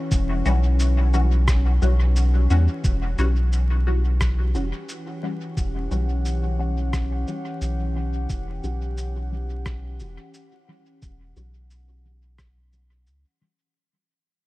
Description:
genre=ambient dub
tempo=88 BPM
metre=4/4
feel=swing 59% on 16ths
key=E dorian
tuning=A4 = 440 Hz
part: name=warbly tape-like pad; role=sustained chords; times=0.0-13.8 s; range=E3 to F#5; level=-32 LUFS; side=left 1 dB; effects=chorus, built-in reverb
part: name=round analog bass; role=bass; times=0.1-13.2 s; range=E1 to E2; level=-21 LUFS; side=equal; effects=none
part: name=electronic cabasa and rim click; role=drums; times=0.1-13.2 s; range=none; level=-34 LUFS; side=equal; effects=studio reverb, dub echo
part: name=electronic kick drum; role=drums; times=0.1-12.5 s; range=none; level=-23 LUFS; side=equal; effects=studio reverb
part: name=filtered dub chord stab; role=stabs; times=0.5-13.6 s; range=E3 to F#4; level=-31 LUFS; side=left 2 dB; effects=phaser, ensemble chorus, dub echo
room=little or no reverb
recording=vinyl crackle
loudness=-20 LUFS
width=side -19 dB against mid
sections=0.0-2.8 A section; 2.8-13.8 B section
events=fade-out 2.8-13.8; filter sweep on synth stab 2.8-13.8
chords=0.0 Em69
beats=| 0.11 0.80 1.48 2.16 | 2.84 3.52 4.21 4.89 | 5.57 6.25 6.93 7.61 | 8.30 8.98 9.66 10.34 | 11.02 11.71 12.39 13.07

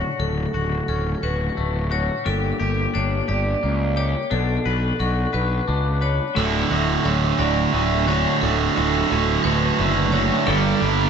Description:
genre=post-rock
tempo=58 BPM (dotted quarters)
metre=6/8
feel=straight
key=D major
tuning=A4 = 440 Hz
part: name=pedal steel guitar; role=sustained chords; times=0.0-11.1 s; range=C#3 to A4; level=-30 LUFS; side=left 6 dB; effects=lush chorus
part: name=twangy electric guitar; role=arpeggios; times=0.0-11.1 s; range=D2 to B4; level=-27 LUFS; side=left 5 dB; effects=vibrato effect, digital delay, slapback echo
part: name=vibraphone with hard mallets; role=arpeggios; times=0.0-11.1 s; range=A4 to D5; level=-29 LUFS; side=equal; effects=digital delay, slapback echo
part: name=fuzz picked electric bass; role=bass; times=0.2-11.1 s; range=D1 to C#2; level=-23 LUFS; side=equal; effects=overdrive
part: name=cranked stack guitar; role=riff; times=6.4-11.1 s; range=D2 to G3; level=-19 LUFS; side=right 6 dB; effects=overdrive, slapback echo
room=moderate recital hall reverb, RT60 1.6 s, digital ambience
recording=big arena sound, nothing above 7.8 kHz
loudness=-18 LUFS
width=side -7 dB against mid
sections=0.0-11.1 A section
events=build-up 0.0-11.1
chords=0.0 Dmaj7; 2.3 Gmadd9; 4.3 Bm7; 6.4 Dmaj7; 10.5 Gmadd9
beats=| 0.20 1.23 | 2.26 3.29 | 4.32 5.34 | 6.37 7.40 | 8.42 9.45 | 10.47

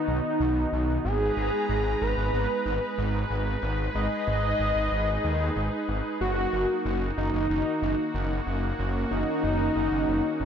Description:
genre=synthwave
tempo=93 BPM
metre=4/4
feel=straight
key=unclear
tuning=A4 = 440 Hz
part: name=wide unison lead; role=melody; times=0.0-10.4 s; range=D#4 to D#5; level=-28 LUFS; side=equal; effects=digital delay
part: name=warm analog pad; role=sustained chords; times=0.0-10.4 s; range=G#3 to A#5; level=-32 LUFS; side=right 1 dB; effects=lush chorus
part: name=wide detuned saw bass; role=bass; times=0.1-10.4 s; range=F#1 to D#2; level=-28 LUFS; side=equal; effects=chorus, tube saturation
room=moderate plate reverb, RT60 3.4 s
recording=bright 1980s-style digital production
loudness=-24 LUFS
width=side -8 dB against mid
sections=0.0-10.4 A section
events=none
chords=0.0 B; 1.0 G#madd9; 6.2 D#m/F#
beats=0.40 | 1.05 1.69 2.34 2.98 | 3.63 4.27 4.92 5.56 | 6.21 6.85 7.50 8.14 | 8.79 9.44 10.08

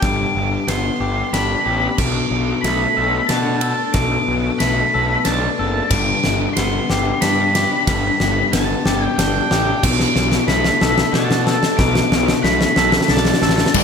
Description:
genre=post-rock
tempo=92 BPM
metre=3/4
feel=straight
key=unclear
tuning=A4 = 440 Hz
part: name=octave-fuzz lead guitar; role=melody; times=0.0-13.8 s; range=D5 to D6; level=-20 LUFS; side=right 1 dB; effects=distortion, slapback echo
part: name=icy glass pad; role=sustained chords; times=0.0-13.8 s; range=B3 to B4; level=-29 LUFS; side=equal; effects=chorus, built-in reverb, plate reverb
part: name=electric guitar at the edge of break-up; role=arpeggios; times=0.0-13.8 s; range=G2 to A4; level=-22 LUFS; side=left 5 dB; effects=slapback echo, plate reverb
part: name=fuzz picked electric bass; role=bass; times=0.0-13.8 s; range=F#1 to B2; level=-22 LUFS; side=equal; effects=overdrive
part: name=huge arena drum kit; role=drums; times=0.0-13.8 s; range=crash cymbal, kick drum, ride cymbal, snare drum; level=-19 LUFS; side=left 1 dB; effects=none
part: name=sludgy distorted guitar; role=riff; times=13.7-13.8 s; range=G2 to D4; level=-18 LUFS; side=left 14 dB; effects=overdrive
part: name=raw garage guitar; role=riff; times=13.8 s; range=G2 to D4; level=-20 LUFS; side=right 15 dB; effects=overdrive, spring reverb
room=moderate large studio reverb, RT60 0.8 s, studio ambience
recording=none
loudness=-15 LUFS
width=side -6 dB against mid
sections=0.0-13.8 A section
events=build-up 0.0-13.8; drum fill 0.0-13.8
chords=0.0 G; 2.0 Bm7; 5.9 G; 9.8 Bm7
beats=| 0.04 0.69 1.34 | 2.00 2.65 3.31 | 3.96 4.61 5.27 | 5.92 6.57 7.23 | 7.88 8.53 9.19 | 9.84 10.49 11.15 | 11.80 12.45 13.10 | 13.75

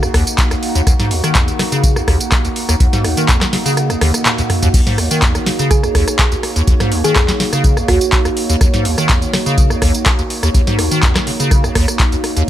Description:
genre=acid house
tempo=124 BPM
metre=4/4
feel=straight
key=Eb minor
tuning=A4 = 442 Hz
part: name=dark analog pad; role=sustained chords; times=0.0-12.5 s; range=Bb3 to Gb5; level=-21 LUFS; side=right 1 dB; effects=chorus, phaser, sidechain pumping
part: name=liquid acid bass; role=riff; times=0.0-12.4 s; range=Eb2 to Eb3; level=-17 LUFS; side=equal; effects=wide subtle chorus, analog delay
part: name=booming analog drum machine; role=drums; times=0.0-12.5 s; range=crash cymbal, handclaps, hi-hat, rim click, snare drum, tambourine, toms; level=-18 LUFS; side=equal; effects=studio ambience
part: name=electronic kick drum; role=drums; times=0.1-12.1 s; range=none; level=-14 LUFS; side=equal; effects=studio ambience
part: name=thumb-piano-like synth pluck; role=melody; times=5.7-8.4 s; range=Gb4 to Ab4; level=-21 LUFS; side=right 2 dB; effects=chorus, tape echo
room=light reverb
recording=none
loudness=-12 LUFS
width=side -12 dB against mid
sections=0.0-12.5 A section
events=kick drops out 3.8-4.7; drum fill 4.0-4.7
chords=0.0 Ebm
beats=0.38 | 0.87 1.35 1.84 2.32 | 2.80 3.29 3.77 4.25 | 4.74 5.22 5.71 6.19 | 6.67 7.16 7.64 8.13 | 8.61 9.09 9.58 10.06 | 10.55 11.03 11.51 12.00 | 12.48

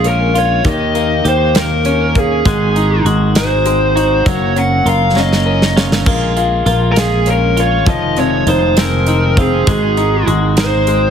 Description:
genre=six-eight pop ballad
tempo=66 BPM (dotted quarters)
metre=6/8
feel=straight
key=Bb minor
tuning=A4 = 440 Hz
part: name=fuzz lead guitar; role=melody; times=0.0-11.1 s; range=Ab4 to Gb5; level=-16 LUFS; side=equal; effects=distortion
part: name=bright concert grand piano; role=accompaniment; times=0.0-11.1 s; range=C3 to G5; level=-18 LUFS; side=left 4 dB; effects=none
part: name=twelve-string electric guitar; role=arpeggios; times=0.0-11.1 s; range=Eb3 to G4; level=-21 LUFS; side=right 6 dB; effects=none
part: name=sustaining fretless electric bass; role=bass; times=0.0-11.1 s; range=F1 to Eb2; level=-16 LUFS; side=equal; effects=none
part: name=modern studio drum kit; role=drums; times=0.0-11.0 s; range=hi-hat, kick drum, snare drum, splash cymbal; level=-17 LUFS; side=right 1 dB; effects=none
room=light reverb, small room ambience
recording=heavily compressed radio sound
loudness=-11 LUFS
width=side -8 dB against mid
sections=0.0-11.1 A section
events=drum fill 5.2-6.1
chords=0.0 Bbm7; 0.6 Eb7; 2.5 Ab7; 4.3 Gbmaj7; 6.1 Bbm7; 7.9 Fm7; 9.7 Ab7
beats=| 0.65 1.55 | 2.45 3.35 | 4.26 5.16 | 6.06 6.96 | 7.87 8.77 | 9.67 10.58

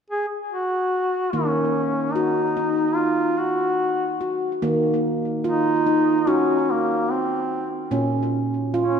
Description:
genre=world meditative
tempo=73 BPM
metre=4/4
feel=straight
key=Eb dorian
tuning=A4 = 438 Hz
part: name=warm duduk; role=melody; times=0.1-9.0 s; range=Bb3 to Ab4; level=-23 LUFS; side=equal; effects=ping-pong delay
part: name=handpan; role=arpeggios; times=1.3-9.0 s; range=Bb2 to Gb4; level=-22 LUFS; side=equal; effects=ping-pong delay
room=wet plate reverb, RT60 2.8 s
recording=dreamy mix soaked in reverb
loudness=-20 LUFS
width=side -7 dB against mid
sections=0.0-1.3 A section; 1.3-4.6 B section; 4.6-9.0 C section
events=none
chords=0.0 N.C.; 1.3 Ebm; 7.9 Bbm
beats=0.52 | 1.34 2.16 2.98 3.80 | 4.62 5.45 6.27 7.09 | 7.92 8.74

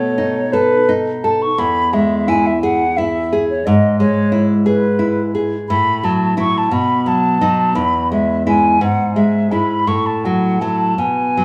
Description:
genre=romantic duo for flute and classical guitar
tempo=58 BPM (dotted quarters)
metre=6/8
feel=rubato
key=E major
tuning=A4 = 441 Hz
part: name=hollow concert flute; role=melody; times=0.0-11.4 s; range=B4 to C#6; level=-20 LUFS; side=equal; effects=none
part: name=nylon-string guitar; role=accompaniment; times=0.0-11.4 s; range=E2 to A4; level=-18 LUFS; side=equal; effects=none
room=moderate recital hall reverb, RT60 1.8 s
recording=small room ambience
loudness=-16 LUFS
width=mono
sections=0.0-11.4 A section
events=none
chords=0.0 B7; 1.6 E; 3.7 E/G#; 5.7 F#m7/A; 6.7 B7; 7.8 E; 8.8 E/G#; 9.9 F#m7/A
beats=0.53 | 1.58 2.62 | 3.65 4.66 | 5.69 6.71 | 7.75 8.80 | 9.86 10.98

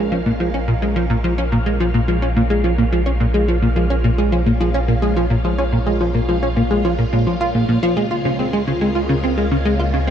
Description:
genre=ambient, sequencer-driven space music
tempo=107 BPM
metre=4/4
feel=straight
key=Bb minor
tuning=A4 = 440 Hz
part: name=phased string machine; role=sustained chords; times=0.0-10.1 s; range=Bb2 to Ab5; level=-26 LUFS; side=equal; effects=ensemble chorus, phaser
part: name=plucky analog bass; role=riff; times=0.0-10.1 s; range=Bb2 to F4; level=-17 LUFS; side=equal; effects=wide subtle chorus, tape echo
part: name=warm sub bass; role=bass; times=0.0-10.1 s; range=Bb1 to Db2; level=-21 LUFS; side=equal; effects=none
room=moderate huge ambient reverb, RT60 8.2 s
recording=dark, warm production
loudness=-15 LUFS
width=side -9 dB against mid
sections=0.0-10.1 A section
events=fade-in on string machine 0.0-10.1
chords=0.0 Bbm; 8.0 Db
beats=0.12 0.68 | 1.24 1.80 2.36 2.92 | 3.48 4.04 4.60 5.17 | 5.73 6.29 6.85 7.41 | 7.97 8.53 9.09 9.65

